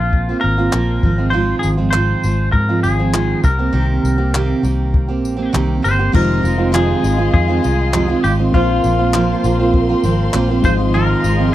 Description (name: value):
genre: acoustic pop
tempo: 100 BPM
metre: 4/4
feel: straight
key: F minor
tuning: A4 = 437 Hz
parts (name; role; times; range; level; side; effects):
- twangy electric guitar; melody; 0.0-11.5 s; F4 to C5; -21 LUFS; left 2 dB; none
- picked steel-string acoustic guitar; accompaniment; 0.0-11.5 s; F2 to G4; -18 LUFS; right 4 dB; none
- vintage muted fingered electric bass; bass; 0.0-11.5 s; F1 to Ab2; -18 LUFS; left 1 dB; none
- compact cocktail drum kit; drums; 0.1-11.4 s; crash cymbal, handclaps, kick drum, tambourine; -18 LUFS; left 1 dB; none
- reed electric piano; accompaniment; 6.1-11.5 s; Ab3 to C5; -25 LUFS; left 9 dB; overdrive
- warm studio string section; sustained chords; 6.1-11.5 s; Ab3 to C6; -25 LUFS; left 4 dB; none
room: little or no reverb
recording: dry, close 1970s-style studio recording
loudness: -13 LUFS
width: side -13 dB against mid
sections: 0.0-6.1 A section; 6.1-11.5 B section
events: none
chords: 0.0 Bbsus2; 1.0 Fm7/Ab; 3.4 Cm7; 6.1 Fm7; 8.5 Bbsus2; 10.6 Fm7/Ab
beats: 0.13 0.73 | 1.33 1.94 2.54 3.14 | 3.74 4.34 4.94 5.54 | 6.14 6.74 7.34 7.94 | 8.54 9.14 9.74 10.34 | 10.94 11.54